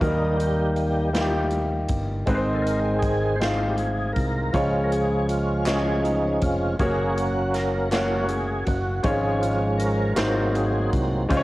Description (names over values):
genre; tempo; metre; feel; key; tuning
slow gospel; 53 BPM (dotted quarters); 6/8; straight; Db major; A4 = 440 Hz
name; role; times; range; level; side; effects
warm grand piano; accompaniment; 0.0-11.4 s; Ab2 to Db5; -26 LUFS; left 1 dB; cassette tape
tonewheel organ; sustained chords; 0.0-11.4 s; Eb3 to C5; -25 LUFS; right 1 dB; slow rotary speaker, overdrive, chorus vibrato, cassette tape
fingered electric bass; bass; 0.0-11.4 s; F1 to Eb2; -27 LUFS; equal; none
swinging big-band drum kit; drums; 0.0-11.4 s; hi-hat, kick drum, snare drum; -30 LUFS; equal; cassette tape
group handclap; percussion; 5.7-10.5 s; none; -35 LUFS; right 1 dB; none
room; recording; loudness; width
light reverb, small room ambience; home recording on cassette; -21 LUFS; side -18 dB against mid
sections
0.0-11.4 A section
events
tonewheel organ solo 0.0-11.4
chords
0.0 Eb; 2.3 Ab; 4.5 Db; 6.8 Gb; 9.1 Db/Ab; 10.2 Ab7